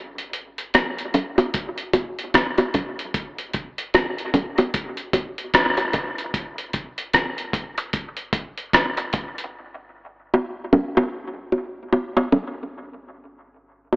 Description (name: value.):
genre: reggae.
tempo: 75 BPM.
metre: 4/4.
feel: swing 60% on 16ths.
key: none.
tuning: none.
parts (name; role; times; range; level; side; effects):
dusty soul sampler-style drum kit; drums; 0.2-9.5 s; hi-hat, kick drum, rim click; -21 LUFS; equal; none.
bongos; percussion; 0.7-14.0 s; none; -21 LUFS; equal; high-pass filter on perc, dub echo.
room: wet spring reverb, RT60 2.6 s.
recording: AM radio sound.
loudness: -20 LUFS.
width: side -26 dB against mid.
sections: 0.0-12.7 A section; 12.7-14.0 B section.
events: break 0.0-1.5; filter sweep on drum 3.1-9.5; part muted 9.5-12.7.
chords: none.